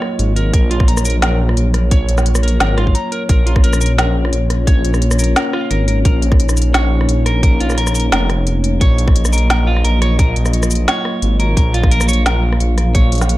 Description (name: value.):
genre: half-time drum and bass.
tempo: 174 BPM.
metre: 4/4.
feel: swing 54% on 16ths, half-time.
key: unclear.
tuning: A4 = 441 Hz.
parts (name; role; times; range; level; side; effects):
dark analog pad; sustained chords; 0.0-13.4 s; Gb3 to F5; -22 LUFS; left 1 dB; chorus, sidechain pumping.
clean electric guitar; arpeggios; 0.0-13.4 s; F4 to Bb5; -23 LUFS; right 2 dB; tape echo.
organic electronic drum kit; drums; 0.0-13.4 s; hi-hat, rim click, shaker, snare drum; -20 LUFS; equal; none.
dark detuned saw bass; bass; 0.2-13.4 s; F1 to Bb1; -14 LUFS; equal; none.
electronic kick drum; drums; 0.5-13.0 s; none; -12 LUFS; equal; overdrive.
room: light reverb.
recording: dark, warm production.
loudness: -12 LUFS.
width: side -17 dB against mid.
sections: 0.0-13.4 A section.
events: break 2.9-3.3.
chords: 0.0 Ebmadd9; 3.3 Bbm; 8.8 Ebmadd9.